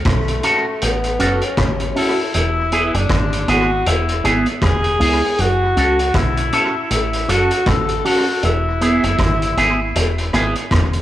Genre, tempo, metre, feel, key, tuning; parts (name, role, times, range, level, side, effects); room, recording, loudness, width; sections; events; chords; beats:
roots reggae; 79 BPM; 4/4; swing 58% on 16ths; F# minor; A4 = 440 Hz
warm tenor saxophone; melody; 0.1-10.7 s; A3 to A4; -20 LUFS; left 2 dB; tape echo
deep dub fingered electric bass; bass; 0.1-11.0 s; E1 to C#2; -20 LUFS; equal
vintage drum kit; drums; 0.1-11.0 s; hi-hat, kick drum, rim click; -21 LUFS; equal; tape echo
electric guitar with an envelope filter; accompaniment; 0.4-11.0 s; B3 to A4; -20 LUFS; right 2 dB; phaser, cassette tape, tape echo
light reverb, small room ambience; home recording on cassette; -14 LUFS; side -13 dB against mid
0.0-11.0 A section
0.0 F#m; 2.3 E; 5.4 F#m; 8.4 E
0.05 0.81 1.57 | 2.33 3.10 3.86 4.62 | 5.38 6.14 6.90 7.66 | 8.43 9.19 9.95 10.71